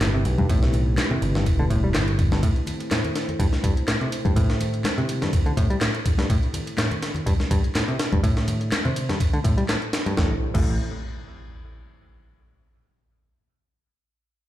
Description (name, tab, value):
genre	breakbeat, breaks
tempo	124 BPM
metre	4/4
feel	swing 55% on 16ths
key	A minor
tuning	A4 = 440 Hz
part	dark analog pad	sustained chords	0.0-10.4 s	A3 to D5	-33 LUFS	right 1 dB	chorus, sidechain pumping
part	picked electric bass	riff	0.0-10.8 s	G2 to G3	-26 LUFS	equal	low-pass filter, ping-pong delay
part	picked electric bass	bass	0.0-2.4, 10.2-10.8 s	E1 to B1	-23 LUFS	equal	tube saturation
part	breakbeat sampler-style drum kit	drums	0.0-10.6 s	crash cymbal, kick drum, ride cymbal, snare drum	-23 LUFS	equal	none
part	punchy analog drum machine	drums	0.0-10.2 s	handclaps, hi-hat	-33 LUFS	left 1 dB	none
part	congas	percussion	0.4-10.2 s	none	-32 LUFS	left 3 dB	none
part	impact	sound effects	10.3-12.1 s	none	-31 LUFS	equal	none
room	light reverb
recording	played on a big sound system in a bare room, large studio reverb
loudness	-20 LUFS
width	side -13 dB against mid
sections	0.0-10.2 A section; 10.2-12.1 B section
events	none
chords	0.0 Am7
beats	0.01 | 0.49 0.98 1.46 1.95 | 2.43 2.91 3.40 3.88 | 4.37 4.85 5.33 5.82 | 6.30 6.78 7.27 7.75 | 8.24 8.72 9.20 9.69 | 10.17 10.65 11.14 11.62